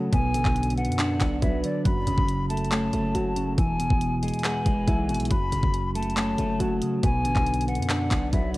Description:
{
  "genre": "hip hop, trap",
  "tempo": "139 BPM",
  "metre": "4/4",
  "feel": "half-time",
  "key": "F# minor",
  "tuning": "A4 = 440 Hz",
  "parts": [
    { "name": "clean electric guitar", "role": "accompaniment", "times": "0.0-8.6 s", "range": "E2 to D4", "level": "-28 LUFS", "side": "right 2 dB", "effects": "wide subtle chorus, low-pass filter, cassette tape" },
    { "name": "soft electric-piano-like synth keys", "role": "arpeggios", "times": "0.0-8.6 s", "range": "E3 to B4", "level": "-30 LUFS", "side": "left 1 dB", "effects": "chorus, low-pass filter, cassette tape, analog delay" },
    { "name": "hollow concert flute", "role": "second line", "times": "0.1-8.6 s", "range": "D5 to B5", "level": "-30 LUFS", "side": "left 2 dB", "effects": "cassette tape, analog delay" },
    { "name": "hard-hitting 808-style bass", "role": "bass", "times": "0.1-8.5 s", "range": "E1 to F#2", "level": "-30 LUFS", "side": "equal", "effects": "none" },
    { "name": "trap drum kit", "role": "drums", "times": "0.1-8.6 s", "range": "handclaps, hi-hat, kick drum", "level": "-26 LUFS", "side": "equal", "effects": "none" }
  ],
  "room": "digital ambience",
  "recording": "home recording on cassette",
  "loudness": "-22 LUFS",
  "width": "side -18 dB against mid",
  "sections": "0.0-8.6 A section",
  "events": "none",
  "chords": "0.1 Bm; 1.9 F#m; 3.6 E; 5.3 F#m; 7.0 Bm"
}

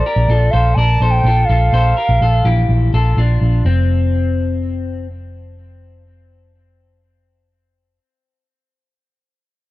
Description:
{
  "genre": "jangly indie pop",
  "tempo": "124 BPM",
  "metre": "4/4",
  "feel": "straight",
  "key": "F major",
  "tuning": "A4 = 440 Hz",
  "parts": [
    { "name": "warbly nostalgic lead", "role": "melody", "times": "0.0-3.1 s", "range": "D5 to A5", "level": "-18 LUFS", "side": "right 2 dB", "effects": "chorus, tape echo" },
    { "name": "electric guitar through a small old amp", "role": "arpeggios", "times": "0.0-5.1 s", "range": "E3 to D5", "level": "-21 LUFS", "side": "left 5 dB", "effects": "lush chorus" },
    { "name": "vintage muted picked electric bass", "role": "bass", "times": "0.2-8.0 s", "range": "F1 to Bb1", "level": "-14 LUFS", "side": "equal", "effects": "tube saturation" }
  ],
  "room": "little or no reverb",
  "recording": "dry, close 1970s-style studio recording",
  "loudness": "-12 LUFS",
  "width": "side -18 dB against mid",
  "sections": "0.0-3.6 A section; 3.6-7.5 B section",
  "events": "none",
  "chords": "0.0 Bbmaj7; 3.6 F5"
}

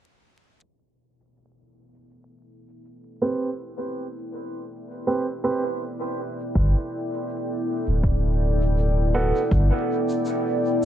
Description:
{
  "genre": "ambient dub",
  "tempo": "81 BPM",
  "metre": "4/4",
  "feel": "swing 57% on 16ths",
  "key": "unclear",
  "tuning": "A4 = 439 Hz",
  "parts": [
    { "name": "deep dark ambient pad", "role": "sustained chords", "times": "2.6-10.8 s", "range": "B3 to G5", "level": "-27 LUFS", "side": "equal", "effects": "chorus, built-in reverb" },
    { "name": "shaker", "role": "drums", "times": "0.6-10.4 s", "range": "none", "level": "-48 LUFS", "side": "equal", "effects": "dub echo" },
    { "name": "warm upright piano", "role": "stabs", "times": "3.2-9.4 s", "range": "B3 to B4", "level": "-27 LUFS", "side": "right 3 dB", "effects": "low-pass filter, dub echo" },
    { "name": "warm sub bass", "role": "bass", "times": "6.6-9.7 s", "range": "D1 to G1", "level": "-20 LUFS", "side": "equal", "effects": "none" },
    { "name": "electronic kick drum", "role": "drums", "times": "6.6-9.7 s", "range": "none", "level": "-24 LUFS", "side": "equal", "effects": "overdrive" }
  ],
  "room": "light reverb, small room reverb",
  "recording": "vinyl crackle, low-pass filter",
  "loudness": "-22 LUFS",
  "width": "side -11 dB against mid",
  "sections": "0.6-10.8 A section",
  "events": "fade-in on ambient pad 0.6-10.8",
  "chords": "0.6 A7(no3); 6.6 G"
}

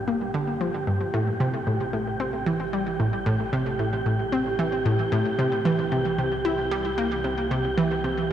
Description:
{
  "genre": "ambient, sequencer-driven space music",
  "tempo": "113 BPM",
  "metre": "4/4",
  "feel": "straight",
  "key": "A minor",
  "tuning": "A4 = 438 Hz",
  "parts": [
    { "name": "warm sub bass", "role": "bass", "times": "0.0-8.3 s", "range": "G1 to C2", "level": "-40 LUFS", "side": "equal", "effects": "none" },
    { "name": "wind-like tuned noise texture", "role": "texture", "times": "0.0-8.3 s", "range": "G4 to G5", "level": "-28 LUFS", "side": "right 2 dB", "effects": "built-in reverb" },
    { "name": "analog pluck", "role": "riff", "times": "0.1-8.3 s", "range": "G2 to E4", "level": "-24 LUFS", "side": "equal", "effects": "chorus, tape echo" }
  ],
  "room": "wet cathedral reverb, RT60 6.4 s",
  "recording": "in a vast, echoing space, cassette tape",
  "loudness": "-23 LUFS",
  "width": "side -10 dB against mid",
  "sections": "0.0-8.3 A section",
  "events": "fade-in on sub bass 0.0-8.3",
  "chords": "0.0 Gm; 1.1 Am7; 5.4 C"
}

